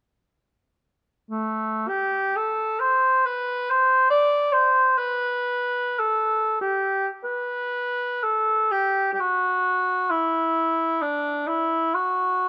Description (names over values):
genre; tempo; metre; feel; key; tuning
classical, free, expressive piece for unaccompanied cor anglais; 39-73 BPM; 3/4; rubato; A dorian; A4 = 437 Hz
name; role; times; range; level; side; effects
mellow cor anglais; solo; 1.3-12.5 s; A3 to D5; -23 LUFS; equal; none
room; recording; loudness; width
light reverb; close, detailed microphones; -23 LUFS; mono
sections
1.3-7.2 A section; 7.2-12.5 B section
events
none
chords
none